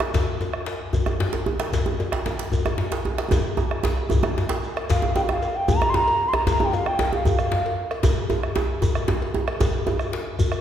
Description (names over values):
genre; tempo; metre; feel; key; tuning
west african traditional, West African drum ensemble; 152 BPM (dotted quarters); 12/8; straight; unclear; A4 = 441 Hz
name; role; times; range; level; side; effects
bombo; percussion; 0.0-10.6 s; none; -27 LUFS; left 1 dB; none
cowbell; percussion; 0.0-10.6 s; none; -33 LUFS; left 2 dB; none
djembe; percussion; 0.0-10.0 s; none; -25 LUFS; right 2 dB; none
djembe; percussion; 0.1-10.5 s; none; -27 LUFS; left 2 dB; none
shekere; percussion; 0.1-10.6 s; none; -35 LUFS; equal; none
alto ocarina; melody; 4.9-7.7 s; F5 to C6; -23 LUFS; equal; none
room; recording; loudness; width
wet scoring stage reverb, RT60 1.6 s; heard from further back in the room; -21 LUFS; side -10 dB against mid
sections
0.0-4.9 A section; 4.9-10.6 B section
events
drum fill 3.3-4.9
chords
none